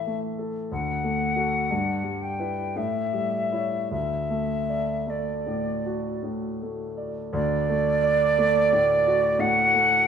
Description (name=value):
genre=classical, romantic duo for flute and grand piano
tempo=50-61 BPM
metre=3/4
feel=rubato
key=D major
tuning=A4 = 442 Hz
part: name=silver concert flute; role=melody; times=0.0-10.1 s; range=D5 to G5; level=-23 LUFS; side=right 1 dB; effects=none
part: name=warm concert grand piano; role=accompaniment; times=0.0-10.1 s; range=D2 to D5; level=-28 LUFS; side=equal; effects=none
room=wet stone room reverb, RT60 1.0 s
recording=heard from further back in the room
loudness=-22 LUFS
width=side -7 dB against mid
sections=0.0-7.3 A section; 7.3-10.1 A section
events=none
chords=0.0 A5; 0.7 D; 1.7 Em/G; 2.8 A7; 3.9 D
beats=| 0.70 1.71 2.77 | 3.90 5.09 6.23 | 7.33 8.38 9.40